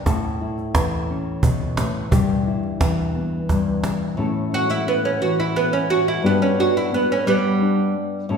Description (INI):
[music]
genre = acoustic folk duo or small band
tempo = 88 BPM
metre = 3/4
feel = straight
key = A mixolydian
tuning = A4 = 440 Hz
[part]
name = nylon-string guitar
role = accompaniment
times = 0.0-8.4 s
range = G2 to A4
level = -22 LUFS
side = left 3 dB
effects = none
[part]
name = cajon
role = percussion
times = 0.1-4.0 s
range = none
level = -22 LUFS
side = right 1 dB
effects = none
[part]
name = oud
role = melody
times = 4.5-7.9 s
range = G3 to F#4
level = -19 LUFS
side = right 3 dB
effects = none
[sound]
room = wet recital hall reverb, RT60 1.7 s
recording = recorded in a church or concert hall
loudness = -18 LUFS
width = side -6 dB against mid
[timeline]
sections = 0.0-4.2 A section; 4.2-8.4 B section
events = oud solo 4.2-8.4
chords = 0.1 A; 2.1 Em/G; 4.2 A; 6.2 G